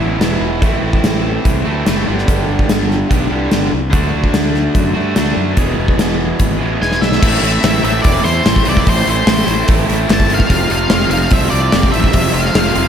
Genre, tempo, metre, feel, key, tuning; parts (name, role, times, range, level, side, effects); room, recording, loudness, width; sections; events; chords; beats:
classic rock; 146 BPM; 4/4; straight; A minor from 7.2 s; A4 = 440 Hz
crunchy overdriven guitar; riff; 0.0-12.9 s; E2 to G#4; -20 LUFS; right 8 dB
distorted electric guitar; riff; 0.0-12.9 s; E2 to D4; -21 LUFS; left 9 dB; overdrive
fuzz fingered electric bass; bass; 0.0-12.9 s; E1 to G2; -19 LUFS; equal; overdrive
gated 80s drum kit; drums; 0.2-12.8 s; crash cymbal, hi-hat, kick drum, snare drum; -15 LUFS; equal
octave-fuzz lead guitar; melody; 6.8-12.9 s; C5 to A5; -18 LUFS; left 1 dB; distortion
group handclap; percussion; 7.6-12.6 s; barely audible
moderate lush hall reverb, RT60 2.1 s; big arena sound; -12 LUFS; side -8 dB against mid
0.0-7.2 A section; 7.2-12.9 B section
drum fill 6.8-7.2
0.0 E; 0.6 Am; 2.1 G; 3.9 D; 5.6 E; 7.2 Am; 10.5 F
0.20 | 0.62 1.03 1.45 1.86 | 2.27 2.69 3.10 3.51 | 3.93 4.34 4.75 5.17 | 5.58 5.99 6.40 6.81 | 7.22 7.63 8.04 8.45 | 8.86 9.27 9.68 10.09 | 10.50 10.91 11.32 11.73 | 12.14 12.55